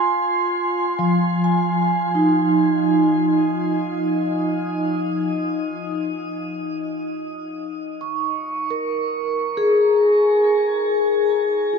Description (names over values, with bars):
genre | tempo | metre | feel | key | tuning
ambient | 52 BPM | 4/4 | straight | Ab major | A4 = 442 Hz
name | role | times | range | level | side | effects
vibraphone with soft mallets | solo | 0.0-11.8 s | F3 to Db6 | -18 LUFS | equal | ping-pong delay
room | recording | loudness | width
wet shimmer reverb, RT60 7.8 s | dark, warm production, nothing above 7.5 kHz | -18 LUFS | side -5 dB against mid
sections
0.0-11.8 A section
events
none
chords
0.0 Ab6; 5.3 Absus2